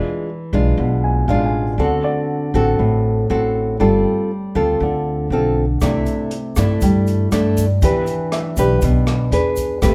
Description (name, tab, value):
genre	bossa nova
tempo	120 BPM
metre	4/4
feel	straight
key	unclear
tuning	A4 = 440 Hz
part	nylon-string guitar	accompaniment	0.0-9.9 s	A2 to B4	-20 LUFS	equal	none
part	upright bass	bass	0.5-9.9 s	G1 to G2	-22 LUFS	equal	none
part	warm baby grand piano	accompaniment	1.0-3.8, 8.3-9.5 s	D5 to G#5	-30 LUFS	equal	none
part	open jazz drum kit	drums	5.8-9.9 s	hi-hat, kick drum, rim click	-26 LUFS	equal	none
part	egg shaker	percussion	5.8-9.9 s	none	-38 LUFS	equal	none
room	light reverb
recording	band playing live in one room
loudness	-18 LUFS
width	mono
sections	0.0-9.9 A section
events	none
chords	0.0 E7b9; 1.8 D7; 3.8 G9sus4; 5.8 C69; 7.8 Em7; 9.3 E7